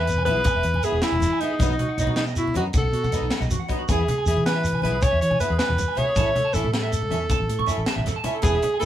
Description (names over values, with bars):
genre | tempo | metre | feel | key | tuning
highlife guitar band | 105 BPM (dotted quarters) | 12/8 | straight | E major | A4 = 439 Hz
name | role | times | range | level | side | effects
clear alto saxophone | melody | 0.0-8.9 s | D#4 to C#5 | -24 LUFS | equal | none
clean electric guitar | arpeggios | 0.0-8.8 s | D#4 to C#6 | -30 LUFS | right 6 dB | none
fingered electric bass | bass | 0.0-8.9 s | E1 to E3 | -26 LUFS | equal | none
tight funk drum kit | drums | 0.1-8.9 s | hi-hat, kick drum, snare drum | -27 LUFS | left 1 dB | none
congas | percussion | 0.1-8.7 s | none | -31 LUFS | left 1 dB | none
shekere | percussion | 0.1-8.9 s | none | -29 LUFS | right 1 dB | none
picked swing-style acoustic guitar | accompaniment | 0.3-8.9 s | F#3 to A4 | -32 LUFS | left 3 dB | none
room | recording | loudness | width
moderate small room reverb, RT60 0.6 s | band playing live in one room | -20 LUFS | side -11 dB against mid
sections
0.0-8.9 A section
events
none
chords
0.0 E; 1.6 B; 3.9 E; 6.2 A